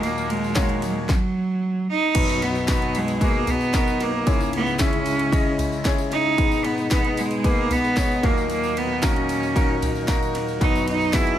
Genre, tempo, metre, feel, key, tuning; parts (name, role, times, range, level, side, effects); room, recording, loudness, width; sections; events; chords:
piano-driven pop; 113 BPM; 4/4; straight; B major; A4 = 442 Hz
rich cello; melody; 0.0-11.4 s; F#3 to E4; -23 LUFS; right 3 dB
clear concert grand piano; accompaniment; 0.0-11.4 s; B1 to E5; -25 LUFS; left 3 dB
bright tonewheel organ; sustained chords; 0.0-11.4 s; A#2 to E4; -32 LUFS; left 1 dB; chorus vibrato, fast rotary speaker
house drum kit; drums; 0.0-11.4 s; crash cymbal, kick drum, ride cymbal, snare drum, toms; -24 LUFS; equal
tambourine; percussion; 0.0-11.3 s; -41 LUFS; left 10 dB
moderate large studio reverb, RT60 0.9 s, small room ambience; -19 LUFS; side -11 dB against mid
0.0-2.1 A section; 2.1-11.4 A section
0.0 D#m; 1.1 N.C.; 2.1 B; 4.3 C#m; 6.4 G#m; 8.2 D#m; 10.6 B